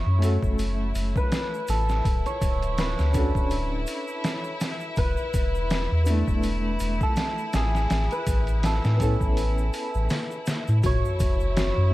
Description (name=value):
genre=trip hop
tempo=82 BPM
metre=4/4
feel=swing 56% on 16ths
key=F# minor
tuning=A4 = 436 Hz
part: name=cimbalom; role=melody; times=0.0-11.9 s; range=G#4 to C#5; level=-31 LUFS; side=equal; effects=vintage 12-bit sampler grit, tape echo
part: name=clear chamber violin section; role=sustained chords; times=0.0-11.9 s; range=E4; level=-36 LUFS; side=left 2 dB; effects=none
part: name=soft dub sub bass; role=bass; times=0.0-11.9 s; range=D1 to A2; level=-24 LUFS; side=equal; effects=none
part: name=dark upright piano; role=accompaniment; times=0.2-11.9 s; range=A3 to A4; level=-31 LUFS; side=equal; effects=tremolo, tape echo
part: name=trip hop sampler-style drum kit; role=drums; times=0.2-11.8 s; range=hi-hat, kick drum, snare drum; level=-27 LUFS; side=equal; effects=overdrive, small room ambience
part: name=egg shaker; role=percussion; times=0.2-11.7 s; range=none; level=-46 LUFS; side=right 2 dB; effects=none
part: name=music box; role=arpeggios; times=10.8-11.9 s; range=F#4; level=-31 LUFS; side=left 4 dB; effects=vintage 12-bit sampler grit
part: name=sub drop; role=sound effects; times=10.8-11.9 s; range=none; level=-30 LUFS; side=equal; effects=none
room=small room reverb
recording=dark, warm production, vinyl crackle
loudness=-22 LUFS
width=side -17 dB against mid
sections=0.0-10.8 A section; 10.8-11.9 B section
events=impact 10.8-11.9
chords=0.0 F#m; 2.0 Dmaj7; 5.0 E7sus4; 7.9 Aadd9; 10.8 F#m